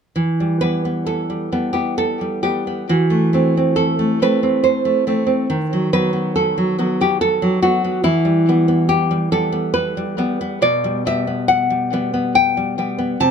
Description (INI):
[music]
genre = romantic piece for solo classical guitar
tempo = 70 BPM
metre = 3/4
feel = rubato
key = E minor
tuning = A4 = 440 Hz
[part]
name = nylon-string guitar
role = solo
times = 0.2-13.3 s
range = B2 to A5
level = -16 LUFS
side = equal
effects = tape echo
[sound]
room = light reverb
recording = close, detailed microphones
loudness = -16 LUFS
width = side -7 dB against mid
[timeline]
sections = 0.1-13.3 A section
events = none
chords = 0.1 Em; 2.9 F#m7b5/E; 5.5 B/D#; 8.1 Em; 10.6 G/B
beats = | 0.15 1.06 1.97 | 2.87 3.76 4.64 | 5.50 6.37 7.22 | 8.07 8.91 9.77 | 10.63 11.50 12.35 | 13.20